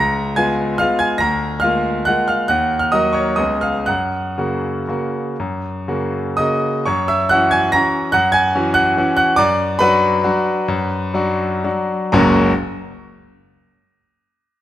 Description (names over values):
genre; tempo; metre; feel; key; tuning
classical, piano waltz; 110-151 BPM; 3/4; rubato; F# major; A4 = 443 Hz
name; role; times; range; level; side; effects
bright concert grand piano; solo; 0.0-12.5 s; F#1 to A#6; -15 LUFS; equal; none
room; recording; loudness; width
moderate scoring stage reverb, RT60 1.5 s; close, detailed microphones; -15 LUFS; side -12 dB against mid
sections
0.0-6.9 A section; 6.9-12.2 B section; 12.2-13.6 C section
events
none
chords
0.0 C#7; 1.2 A#7/D; 2.5 D#m; 3.4 C#7; 3.9 F#; 6.9 F#7; 9.4 Bm/F#; 12.2 F#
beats
0.38 0.81 | 1.22 1.64 2.08 | 2.49 2.91 3.38 | 3.88 4.37 4.88 | 5.39 5.88 6.39 | 6.87 7.31 7.74 | 8.15 8.56 8.98 | 9.40 9.81 10.26 | 10.70 11.15 11.65 | 12.17